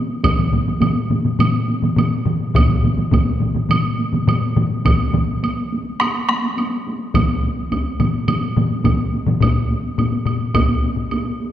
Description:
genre	japanese traditional, taiko drum ensemble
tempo	105 BPM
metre	4/4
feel	straight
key	none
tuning	none
part	taiko ensemble	percussion	0.1-11.5 s	none	-22 LUFS	right 1 dB	none
part	solo taiko drums	percussion	0.2-11.1 s	none	-21 LUFS	left 4 dB	none
part	solo taiko drums	percussion	0.2-9.4 s	none	-22 LUFS	right 3 dB	none
part	taiko ensemble	percussion	0.2-10.7 s	none	-21 LUFS	equal	none
part	woodblock	percussion	0.2-11.2 s	none	-27 LUFS	right 3 dB	none
room	wet concert hall reverb, RT60 1.9 s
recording	none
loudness	-16 LUFS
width	side -11 dB against mid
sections	0.0-9.4 A section; 9.4-11.5 B section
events	speeding up 0.0-11.5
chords	none

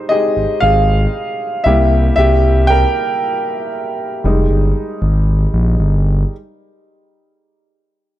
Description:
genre	contemporary R&B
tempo	58 BPM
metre	4/4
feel	straight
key	F minor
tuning	A4 = 440 Hz
part	warm grand piano	accompaniment	0.0-6.3 s	G3 to G5	-16 LUFS	equal	none
part	smooth gliding synth bass	bass	0.4-6.2 s	F1 to C2	-13 LUFS	equal	none
room	small room ambience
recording	dark, warm production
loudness	-12 LUFS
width	side -13 dB against mid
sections	0.0-6.3 A section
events	grand piano solo 0.0-6.3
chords	0.0 Fm7; 1.7 C7; 4.2 Fm9 (rootless)

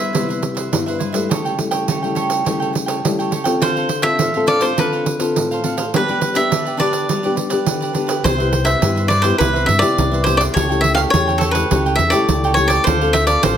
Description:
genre	samba and choro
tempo	104 BPM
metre	4/4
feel	straight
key	C major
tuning	A4 = 440 Hz
part	cavaquinho	melody	0.0-13.6 s	A4 to F5	-18 LUFS	equal	none
part	cavaquinho	accompaniment	0.0-13.6 s	D4 to G5	-24 LUFS	right 5 dB	none
part	nylon-string guitar	accompaniment	0.0-13.6 s	G2 to A4	-21 LUFS	left 4 dB	none
part	pandeiro	percussion	0.1-13.6 s	none	-22 LUFS	right 5 dB	none
part	mellow fretless electric bass	bass	8.2-13.6 s	A1 to G2	-20 LUFS	left 1 dB	none
room	moderate large studio reverb, RT60 0.9 s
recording	none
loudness	-15 LUFS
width	side -9 dB against mid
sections	0.0-8.2 A section; 8.2-13.6 B section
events	none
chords	0.0 Cmaj7; 1.3 A7/C#; 3.6 Dm7; 5.9 G; 8.2 Cmaj7; 10.6 A7/C#; 12.9 Dm7

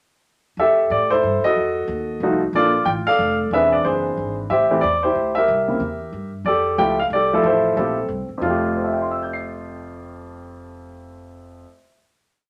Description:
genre	jazz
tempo	184 BPM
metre	3/4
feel	swing 61% on 8ths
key	F major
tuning	A4 = 440 Hz
part	warm baby grand piano	melody	0.6-12.2 s	F2 to C7	-20 LUFS	equal	none
part	upright bass	bass	0.6-11.6 s	E1 to A2	-33 LUFS	equal	none
room	wet studio reverb, RT60 0.5 s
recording	none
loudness	-20 LUFS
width	mono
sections	0.6-8.4 A section; 8.4-10.4 final chord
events	none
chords	0.6 Fmaj9; 1.6 F7b9; 2.5 Bbmaj7; 3.5 E7b13; 4.5 Am7; 5.5 C7; 6.5 Fmaj9

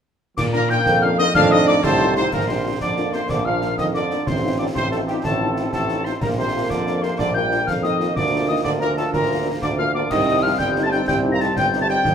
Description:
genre	military-style march for wind band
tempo	123 BPM (dotted quarters)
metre	6/8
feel	straight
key	Bb major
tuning	A4 = 440 Hz
part	mellow trumpet section	melody	0.4-12.1 s	G4 to Bb5	-24 LUFS	equal	none
part	wooden piccolo	second line	0.4-12.1 s	G5 to Bb6	-24 LUFS	left 5 dB	none
part	warm trombone section	sustained chords	0.4-12.1 s	Eb3 to Eb4	-27 LUFS	right 2 dB	none
part	clear tuba	bass	0.4-12.1 s	G1 to Bb2	-24 LUFS	right 2 dB	none
part	concert snare drum, clash cymbals and concert bass drum	drums	0.4-12.1 s	none	-29 LUFS	left 1 dB	none
part	mellow French horn section	accompaniment	0.5-11.9 s	G3 to G4	-29 LUFS	left 5 dB	none
part	clear euphonium	second line	0.9-12.1 s	G2 to D4	-26 LUFS	right 4 dB	none
room	wet large studio reverb, RT60 1.5 s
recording	minimal, uncompressed stereo recording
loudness	-17 LUFS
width	side -7 dB against mid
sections	0.4-2.3 A section; 2.3-12.1 B section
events	none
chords	0.4 Bb; 1.3 F7; 2.3 Bb; 4.3 F7/A; 6.2 Bb; 8.2 Bb/D; 10.1 Cm

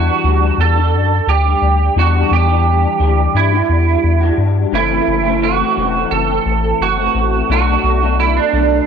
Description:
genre	indie pop, bedroom pop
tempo	87 BPM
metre	4/4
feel	straight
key	E minor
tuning	A4 = 445 Hz
part	electric guitar through a small old amp	melody	0.0-8.8 s	D4 to A4	-16 LUFS	right 9 dB	analog chorus, tape echo
part	electric guitar through a small old amp	accompaniment	0.0-8.9 s	F#2 to F#4	-20 LUFS	left 14 dB	ensemble chorus, warbly pitch drift
part	round analog bass	bass	0.0-8.8 s	E1 to G2	-15 LUFS	left 1 dB	none
room	light reverb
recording	1960s-style stereo with parts hard left and right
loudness	-12 LUFS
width	side -7 dB against mid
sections	0.0-8.9 A section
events	none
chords	0.0 Em9; 4.7 F#m7b5; 7.5 Bm7

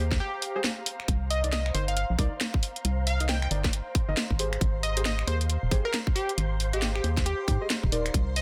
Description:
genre	UK garage, two-step garage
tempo	136 BPM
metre	4/4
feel	swing 61% on 16ths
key	unclear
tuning	A4 = 442 Hz
part	deep mellow chord stab	stabs	0.0-8.4 s	Eb4 to Eb5	-38 LUFS	equal	chorus, dub echo
part	organ-like FM bass	bass	0.0-8.4 s	Eb1 to Ab2	-30 LUFS	equal	none
part	ethereal airy pad	texture	0.0-8.4 s	C5 to Bb5	-44 LUFS	equal	ensemble chorus, built-in reverb, sidechain pumping
part	electronic kick drum	drums	0.1-8.2 s	none	-29 LUFS	equal	none
part	garage drum kit	drums	0.1-8.4 s	finger snaps, hi-hat, snare drum	-33 LUFS	equal	none
part	plucky unison lead	melody	0.2-8.4 s	G4 to G5	-35 LUFS	equal	dub echo
part	soft string machine	sustained chords	1.1-8.4 s	C5 to C6	-46 LUFS	equal	phaser, ensemble chorus, sidechain pumping
room	digital ambience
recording	dense, heavily limited modern master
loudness	-28 LUFS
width	mono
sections	0.0-8.4 A section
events	break 0.2-1.1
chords	0.0 Abmaj7; 1.1 Cm9; 4.4 Abmaj7

